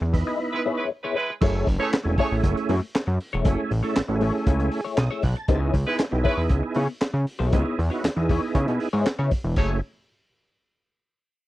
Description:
funk; 118 BPM; 4/4; straight; F# dorian; A4 = 440 Hz
clean electric guitar; accompaniment; 0.0-9.7 s; A3 to D#5; -28 LUFS; left 6 dB; wah, phaser
fat analog bass; bass; 0.0-9.8 s; E1 to C#3; -23 LUFS; equal
tonewheel organ; stabs; 0.1-9.8 s; A3 to A5; -27 LUFS; right 3 dB; chorus vibrato, slow rotary speaker
crunchy breakbeat drum kit; drums; 0.1-9.7 s; crash cymbal, handclaps, hi-hat, kick drum, snare drum; -24 LUFS; equal
clear horn section; second line; 0.5-2.3, 5.9-6.4, 9.6-9.8 s; G#3 to C#5; -27 LUFS; right 2 dB
little or no reverb; dry, close 1970s-style studio recording; -21 LUFS; side -16 dB against mid
0.0-1.4 A section; 1.4-9.6 B section; 9.6-11.5 C section
band accent 0.0-1.4; break 0.4-1.4
0.0 C#m7; 1.4 F#m9; 5.5 C#m7; 9.6 F#m9

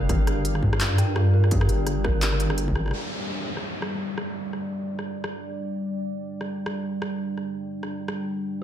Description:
half-time drum and bass; 169 BPM; 4/4; swing 57% on 16ths, half-time; A4 = 440 Hz
deep dark ambient pad; sustained chords; 0.0-8.6 s; G3 to G5; -30 LUFS; right 1 dB; chorus, built-in reverb, sidechain pumping
dark detuned synth bell; arpeggios; 0.0-3.0 s; F4 to G5; -32 LUFS; right 1 dB; chorus, phaser, vintage 12-bit sampler grit, digital delay
deep soft wobble bass; bass; 0.0-2.9 s; G1 to G2; -22 LUFS; equal; chorus
electronic kick drum; drums; 0.1-2.7 s; -25 LUFS; equal; distortion
industrial drum kit; drums; 0.1-8.2 s; handclaps, hi-hat, rim click; -32 LUFS; left 1 dB; low-pass filter on hats, low-pass filter on snare, low-pass filter on room
downlifter; sound effects; 2.9-5.8 s; -35 LUFS; equal
moderate lush hall reverb, RT60 1.6 s; -24 LUFS; side -10 dB against mid
0.0-2.9 A section; 2.9-8.6 B section
drop 0.0-2.9; drum fill 2.8
0.0 G5

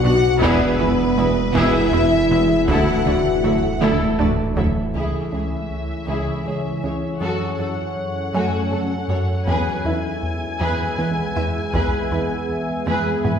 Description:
cinematic, hybrid orchestral and electronic film score; 53 BPM (dotted quarters); 6/8; straight; A4 = 440 Hz
rich symphonic violin section; melody; 0.0-13.4 s; G#4 to G#5; -30 LUFS; left 3 dB
rich studio violin section; second line; 0.0-13.3 s; E4 to F#5; -28 LUFS; left 2 dB
rich symphonic viola section; accompaniment; 0.0-13.3 s; A3 to B4; -27 LUFS; right 1 dB
analog drone; sustained chords; 0.0-13.4 s; E3 to E5; -26 LUFS; equal; chorus
mellow French horn section; sustained chords; 0.0-3.8 s; B3 to F#4; -20 LUFS; left 2 dB
analog pluck; arpeggios; 0.0-13.4 s; C#3 to F#4; -30 LUFS; right 4 dB
smooth synth bass; riff; 0.0-13.4 s; C#2 to F#3; -26 LUFS; left 1 dB
dark tuba; bass; 0.0-4.7 s; E1 to D2; -26 LUFS; right 3 dB
rich studio cello section; bass; 0.0-13.3 s; C#2 to B2; -28 LUFS; right 3 dB
rich symphonic double bass section; bass; 0.0-4.7 s; E1 to D2; -27 LUFS; right 2 dB
saturated sub bass; bass; 0.0-4.9 s; D1 to B1; -30 LUFS; equal
dark baby grand piano; texture; 0.0-2.7, 6.5-13.4 s; D4 to C#6; -33 LUFS; left 1 dB
taiko ensemble; drums; 0.4-13.4 s; -27 LUFS; equal
wet scoring stage reverb, RT60 1.6 s; heard from further back in the room; -18 LUFS; side -7 dB against mid
0.0-5.0 A section; 5.0-13.4 B section
drum fill 3.8-5.0, 12.9-13.4
0.4 E; 2.7 Dadd9; 5.0 C#m; 7.2 F#m; 9.5 E

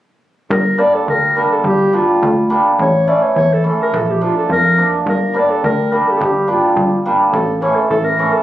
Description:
klezmer; 105 BPM; 2/4; straight; G dorian sharp4; A4 = 439 Hz
dark clarinet; melody; 0.5-8.4 s; F4 to D5; -15 LUFS; left 1 dB
plucky analog bass; bass; 0.5-8.2 s; G1 to F2; -18 LUFS; equal
cimbalom; accompaniment; 0.8-8.4 s; E3 to D4; -16 LUFS; right 2 dB
moderate studio reverb, RT60 0.5 s; recorded on a phone in the room, club reverb, compression; -12 LUFS; side -14 dB against mid
0.5-8.4 A section
0.5 Gm; 2.8 A; 3.9 Bb; 5.1 Gm; 7.3 A

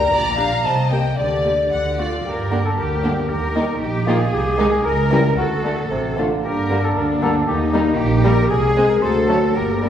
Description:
cinematic, playful, whimsical film cue; 114 BPM; 2/4; straight; G minor; A4 = 440 Hz
large celesta; melody; 0.0-9.9 s; G4 to C6; -27 LUFS; left 2 dB
rich studio violin section; melody; 0.0-9.9 s; D4 to Bb5; -32 LUFS; left 2 dB
silver concert flute; second line; 0.0-9.9 s; D5 to Bb5; -25 LUFS; left 1 dB
warm studio violin section; second line; 0.0-9.9 s; A3 to F#5; -29 LUFS; left 3 dB
warm studio cello section; bass; 0.0-9.9 s; Bb2 to Bb4; -24 LUFS; right 1 dB
warm studio double bass section; bass; 0.0-9.9 s; G1 to G2; -22 LUFS; right 2 dB
rich studio viola section; accompaniment; 0.4-9.9 s; F#3 to G4; -27 LUFS; right 1 dB
bright clarinet; second line; 2.0-9.9 s; Eb4 to C5; -25 LUFS; left 2 dB
warm bassoon; accompaniment; 2.5-9.9 s; C3 to Ab3; -27 LUFS; right 1 dB
mellow French horn section; sustained chords; 2.5-9.9 s; G3 to Ab4; -23 LUFS; left 2 dB
wet scoring stage reverb, RT60 1.5 s; heard from further back in the room; -16 LUFS; side -9 dB against mid
0.0-2.3 A section; 2.3-9.9 B section
0.1 Gm/Bb; 0.6 Cm7; 1.2 Gm/D; 1.7 D; 2.3 Gm; 3.3 Eb; 4.3 Ab/C; 4.8 C#dim7; 5.4 D; 6.4 Gm; 7.5 Eb; 8.5 Ab/C; 9.0 D7

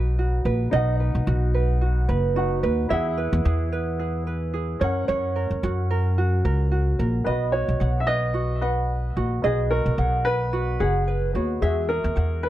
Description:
acoustic pop; 110 BPM; 4/4; swing 55% on 16ths; B major; A4 = 436 Hz
tenor ukulele; accompaniment; 0.0-12.5 s; F#4 to F#5; -27 LUFS; right 4 dB; plate reverb
warm concert grand piano; accompaniment; 0.0-12.5 s; G#3 to F#5; -33 LUFS; left 6 dB; plate reverb
upright bass; bass; 0.0-12.5 s; F#1 to F#2; -23 LUFS; equal
dark upright piano; melody; 7.2-12.5 s; G#4 to E5; -26 LUFS; left 2 dB; plate reverb, ping-pong delay
light reverb; dark, warm production; -21 LUFS; side -13 dB against mid
0.0-7.3 A section; 7.3-12.5 B section
0.0 B; 2.9 Eadd9; 4.8 F#; 7.3 B; 11.6 Eadd9

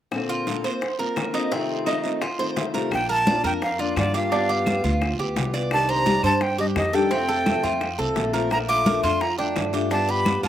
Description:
latin, Cuban son and guajira; 172 BPM; 4/4; straight; Bb major; A4 = 440 Hz
picked steel-string acoustic guitar; accompaniment; 0.1-10.5 s; F2 to G4; -26 LUFS; left 4 dB; slapback echo
bongos; percussion; 0.1-10.5 s; -32 LUFS; left 5 dB; slapback echo
claves; percussion; 0.1-10.4 s; -37 LUFS; left 2 dB
guiro; percussion; 0.1-10.5 s; -37 LUFS; right 8 dB; slapback echo
Cuban tres; arpeggios; 0.3-10.5 s; C4 to D5; -27 LUFS; right 4 dB; slapback echo
breathy bright jazz flute; melody; 2.9-10.5 s; D5 to D6; -23 LUFS; right 2 dB
upright bass; bass; 2.9-10.5 s; Bb1 to G2; -28 LUFS; right 1 dB
congas; percussion; 2.9-10.5 s; -27 LUFS; equal
little or no reverb; recorded outdoors, with no room sound; -20 LUFS; side -11 dB against mid
0.1-2.9 A section; 2.9-10.5 B section
0.1 Bbadd9; 1.5 F7; 2.9 Bb; 4.3 G7; 5.7 Cmadd9; 7.1 F; 8.5 Bbmaj7; 9.9 G7

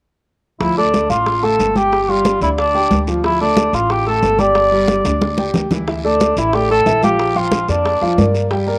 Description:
latin, salsa; 182 BPM; 4/4; straight; D minor; A4 = 440 Hz
dark cor anglais; melody; 0.6-8.3 s; D4 to D5; -19 LUFS; equal; cassette tape
warm grand piano; accompaniment; 0.6-8.8 s; E3 to G5; -21 LUFS; equal; cassette tape
upright bass; bass; 0.6-8.8 s; G1 to G2; -25 LUFS; equal
bongos; percussion; 0.6-8.7 s; -29 LUFS; equal
congas; percussion; 0.6-8.8 s; -23 LUFS; equal
guiro; percussion; 0.6-8.8 s; -35 LUFS; equal
moderate spring reverb, RT60 2.3 s; home recording on cassette; -16 LUFS; mono
0.6-5.9 A section; 5.9-8.8 B section
drum fill 5.1-5.9
0.6 Dm; 1.9 G5; 3.2 Dm; 4.6 G5; 5.9 Dsus2; 7.2 Bb

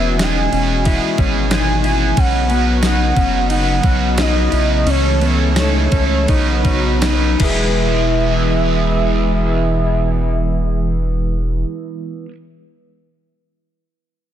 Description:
dream pop; 77-91 BPM; 4/4; straight; E major; A4 = 436 Hz
warm velvety synth lead; melody; 0.0-11.7 s; C#5 to G#5; -22 LUFS; right 2 dB; chorus, digital delay
biting overdriven guitar; accompaniment; 0.0-12.3 s; B2 to B4; -23 LUFS; right 6 dB; harmonic tremolo, lush chorus
warm analog pad; sustained chords; 0.0-11.6 s; B2 to D#5; -21 LUFS; equal; chorus
mellow electric guitar; arpeggios; 0.0-12.4 s; B3 to E5; -23 LUFS; left 5 dB; wide subtle chorus, digital delay
round analog bass; bass; 0.0-11.6 s; E1 to C#2; -18 LUFS; equal
crisp 8-bit digital drum machine; drums; 0.2-7.6 s; crash cymbal, kick drum, ride cymbal, snare drum, tambourine; -21 LUFS; equal
vibraphone with medium mallets; texture; 0.3-12.3 s; B4 to D#5; -31 LUFS; left 5 dB; digital delay
light reverb, digital ambience; dense, heavily limited modern master; -14 LUFS; side -10 dB against mid
0.0-7.8 A section; 7.8-10.9 B section
slowing down 2.2-7.8
0.0 E; 2.2 Badd9; 4.9 A/C#; 6.3 Badd9; 7.4 E

